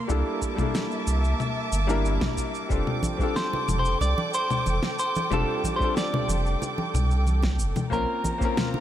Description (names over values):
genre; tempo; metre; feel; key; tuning
sunset chillout; 92 BPM; 4/4; straight; F major; A4 = 439 Hz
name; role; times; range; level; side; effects
clear grand piano; accompaniment; 0.0-8.8 s; G3 to Bb4; -30 LUFS; moving between left 6 dB and equal; auto-pan, ping-pong delay
dark chamber string section; sustained chords; 0.0-8.8 s; Bb3 to D6; -32 LUFS; right 1 dB; none
warm sub bass; bass; 0.1-8.1 s; F1 to C2; -24 LUFS; equal; none
electronic shaker, congas and snare drum; drums; 0.1-8.7 s; none; -30 LUFS; left 2 dB; none
electronic kick drum; drums; 0.4-8.5 s; none; -29 LUFS; equal; overdrive
congas; percussion; 3.0-8.8 s; none; -33 LUFS; right 2 dB; none
semi-hollow electric guitar; melody; 3.4-8.8 s; A4 to D5; -29 LUFS; equal; ping-pong delay
room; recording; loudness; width
light reverb, studio ambience; none; -23 LUFS; side -11 dB against mid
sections
0.0-8.8 A section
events
none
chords
0.1 C13; 2.7 F69; 7.9 Bbmadd9